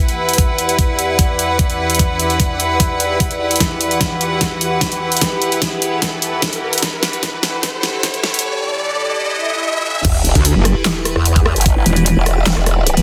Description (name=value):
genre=heavy wobble dubstep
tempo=149 BPM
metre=4/4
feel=half-time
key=E minor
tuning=A4 = 440 Hz
part: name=evolving wavetable pad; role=sustained chords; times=0.0-13.0 s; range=E2 to D5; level=-26 LUFS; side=equal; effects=phaser, built-in reverb, sidechain pumping
part: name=riser, swell and sub drop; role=sound effects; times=0.1-11.7 s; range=none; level=-27 LUFS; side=equal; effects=none
part: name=rich chamber string section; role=texture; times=0.0-8.4 s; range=E4 to F#5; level=-22 LUFS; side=equal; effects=sidechain pumping
part: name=dubstep drum kit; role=drums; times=0.1-13.0 s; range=crash cymbal, handclaps, hi-hat, rim click, snare drum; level=-21 LUFS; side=equal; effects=overdrive
part: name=electronic kick drum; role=drums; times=0.4-11.7 s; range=none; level=-19 LUFS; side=equal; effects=overdrive
part: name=growl bass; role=bass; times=10.0-13.0 s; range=E1 to E2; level=-17 LUFS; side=equal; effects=chorus, overdrive
part: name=metallic wobble bass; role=bass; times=10.4-13.0 s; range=E1 to D2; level=-15 LUFS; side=equal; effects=chorus, overdrive
room=moderate digital room reverb, RT60 1.1 s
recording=dense, heavily limited modern master, high-pass filter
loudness=-16 LUFS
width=mono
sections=0.0-10.0 A section; 10.0-13.0 B section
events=build-up 0.0-10.0; filter sweep on ambient pad 0.0-10.0; filter sweep 0.0-10.0; riser 0.1-10.0; drum fill 3.6-8.4; swell 9.2-10.0; drop 10.0-13.0; impact 10.0-11.7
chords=0.0 Em